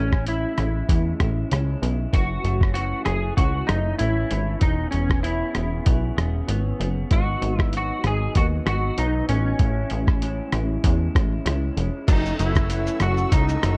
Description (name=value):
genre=indie pop, bedroom pop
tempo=96 BPM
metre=4/4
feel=swing 55% on 16ths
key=F# dorian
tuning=A4 = 440 Hz
part: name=semi-hollow electric guitar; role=melody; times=0.0-13.8 s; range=C#4 to G#4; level=-30 LUFS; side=equal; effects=ensemble chorus, slapback echo
part: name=electric guitar through a small old amp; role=accompaniment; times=0.0-13.8 s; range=F#2 to G#4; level=-34 LUFS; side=equal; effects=analog chorus, vibrato effect
part: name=plucky analog bass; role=bass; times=0.0-13.8 s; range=E1 to E2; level=-26 LUFS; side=equal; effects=none
part: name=lo-fi sampler-style drum kit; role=drums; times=0.1-13.8 s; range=crash cymbal, hi-hat, kick drum, rim click, shaker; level=-24 LUFS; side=equal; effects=none
part: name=string machine, violas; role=sustained chords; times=12.1-13.8 s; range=A4 to E6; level=-38 LUFS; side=equal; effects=ensemble chorus
room=digital ambience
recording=dark, warm production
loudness=-22 LUFS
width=mono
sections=0.0-12.1 A section; 12.1-13.8 B section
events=none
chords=0.0 Amaj7; 2.1 F#m7; 4.6 E6; 7.1 G#m7; 9.6 Amaj7; 12.1 F#m7